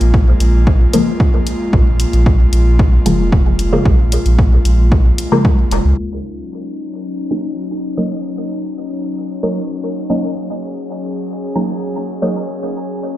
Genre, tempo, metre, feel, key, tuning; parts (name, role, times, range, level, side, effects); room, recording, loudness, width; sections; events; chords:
dub techno; 113 BPM; 4/4; straight; Eb minor; A4 = 437 Hz
airy breathy pad; sustained chords; 0.0-13.2 s; Gb3 to Ab4; -22 LUFS; left 1 dB; chorus, vintage 12-bit sampler grit, sidechain pumping
pure sine sub bass; bass; 0.0-5.9 s; F1 to Db2; -13 LUFS; equal; sidechain pumping
electronic hi-hat; drums; 0.0-5.8 s; -26 LUFS; left 3 dB; low-pass filter on hats
electronic kick drum; drums; 0.1-5.6 s; -13 LUFS; equal; overdrive
filtered dub chord stab; stabs; 0.9-12.5 s; Db3 to Eb4; -19 LUFS; equal; chorus, phaser, sidechain pumping, dub echo
light reverb; played on a big sound system in a bare room, stone room reverb, low-pass filter; -13 LUFS; side -14 dB against mid
0.0-6.0 A section; 6.0-13.2 B section
filter sweep 6.0-13.2
0.0 Bbm7; 6.0 Ebm7